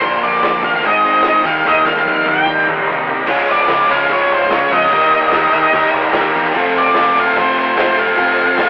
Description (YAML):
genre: classic rock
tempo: 147 BPM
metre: 4/4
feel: straight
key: unclear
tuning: A4 = 444 Hz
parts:
  - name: octave-fuzz lead guitar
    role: melody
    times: 0.0-8.7 s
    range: C5 to G5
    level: -16 LUFS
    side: equal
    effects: distortion
  - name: tonewheel organ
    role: sustained chords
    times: 0.0-8.7 s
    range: Db3 to C5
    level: -25 LUFS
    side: equal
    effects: none
  - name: distorted electric guitar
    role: riff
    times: 0.0-8.7 s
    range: F2 to G4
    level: -23 LUFS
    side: equal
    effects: distortion
  - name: overdriven electric guitar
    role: riff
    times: 0.0-8.7 s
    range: Ab2 to F4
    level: -28 LUFS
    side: equal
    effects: none
  - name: overdriven semi-hollow guitar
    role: riff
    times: 0.0-8.7 s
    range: Ab2 to Db5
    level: -20 LUFS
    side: equal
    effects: none
  - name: growling picked electric bass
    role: bass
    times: 0.0-8.7 s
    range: F1 to F2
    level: -26 LUFS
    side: equal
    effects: overdrive
  - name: vintage drum kit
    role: drums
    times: 0.0-8.7 s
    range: crash cymbal, hi-hat, kick drum, snare drum, toms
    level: -25 LUFS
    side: equal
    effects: none
  - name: egg shaker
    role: percussion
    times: 3.3-8.7 s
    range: none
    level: barely audible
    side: none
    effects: none
room: moderate studio reverb, RT60 0.6 s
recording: rough rehearsal-room recording, telephone sound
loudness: -14 LUFS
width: mono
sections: 0.0-3.3 A section; 3.3-8.7 B section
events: drum fill 1.7-3.3; lead electric guitar solo 3.3-8.7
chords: 0.0 Bb; 0.8 Ab; 1.5 Eb; 3.3 Db; 4.9 Eb; 6.6 F